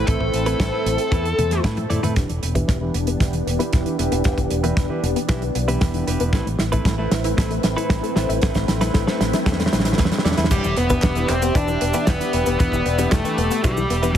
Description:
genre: italo disco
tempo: 115 BPM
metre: 4/4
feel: straight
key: unclear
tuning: A4 = 439 Hz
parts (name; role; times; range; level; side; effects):
- dark smooth lead guitar; melody; 0.0-1.6, 10.5-14.2 s; G3 to D5; -24 LUFS; left 1 dB; overdrive, digital delay
- lush unison pad; sustained chords; 0.0-14.2 s; E3 to B5; -26 LUFS; equal; chorus, phaser
- direct-recorded clean electric guitar; stabs; 0.0-14.2 s; A2 to D5; -28 LUFS; right 3 dB; vintage 12-bit sampler grit, low-pass filter, digital delay
- fingered electric bass with an envelope filter; bass; 0.0-14.2 s; E1 to A2; -24 LUFS; equal; none
- damped 70s drum kit; drums; 0.1-14.2 s; cabasa, crash cymbal, handclaps, hi-hat, snare drum, toms; -24 LUFS; right 1 dB; studio reverb
- kick drum; drums; 0.1-14.2 s; none; -21 LUFS; equal; studio reverb
- analog pluck; arpeggios; 2.2-14.1 s; E3 to E4; -28 LUFS; left 5 dB; chorus, digital delay
room: light reverb, small room ambience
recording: heavily compressed radio sound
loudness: -18 LUFS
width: side -10 dB against mid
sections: 0.0-2.2 A section; 2.2-10.5 B section; 10.5-14.2 C section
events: drum fill 1.4-2.2, 2.2-10.5; filter sweep on synth arpeggio sound 2.2-10.5; filter sweep on clean electric guitar 2.2-10.5; filter sweep on analog synth pad 2.2-10.5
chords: 0.0 Amadd9; 2.2 Em7; 6.3 Amadd9; 10.5 Em7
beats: | 0.07 0.60 1.12 1.64 | 2.16 2.68 3.21 3.73 | 4.25 4.77 5.29 5.81 | 6.34 6.86 7.38 7.90 | 8.42 8.95 9.47 9.99 | 10.51 11.03 11.55 12.07 | 12.60 13.12 13.64 14.16

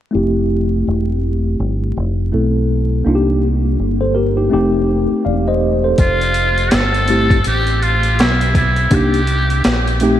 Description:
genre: hip hop, jazz-hop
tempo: 82 BPM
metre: 4/4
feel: swing 61% on 16ths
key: F major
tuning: A4 = 440 Hz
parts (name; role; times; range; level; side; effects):
- tine electric piano; accompaniment; 0.1-10.2 s; A3 to F5; -17 LUFS; left 1 dB; medium stereo tremolo, low-pass filter
- deep dub fingered electric bass; bass; 0.1-10.2 s; E1 to C2; -17 LUFS; equal; none
- trumpet with metal mute; melody; 6.0-10.0 s; E4 to A4; -17 LUFS; equal; diffuse ambient delay
- boom bap sampler-style drum kit; drums; 6.0-10.2 s; hi-hat, kick drum, snare drum; -18 LUFS; equal; none
room: moderate huge ambient reverb, RT60 7.9 s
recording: dreamy mix soaked in reverb, vinyl crackle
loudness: -13 LUFS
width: side -11 dB against mid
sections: 0.1-6.0 A section; 6.0-10.2 B section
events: filter sweep on tine electric piano 0.1-6.0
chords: 0.1 Fmaj7; 3.1 Cm7; 4.5 F9; 6.0 Fmaj7; 8.9 Cm7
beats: | 0.14 0.87 1.60 2.33 | 3.06 3.79 4.53 5.26 | 5.99 6.72 7.45 8.18 | 8.92 9.65

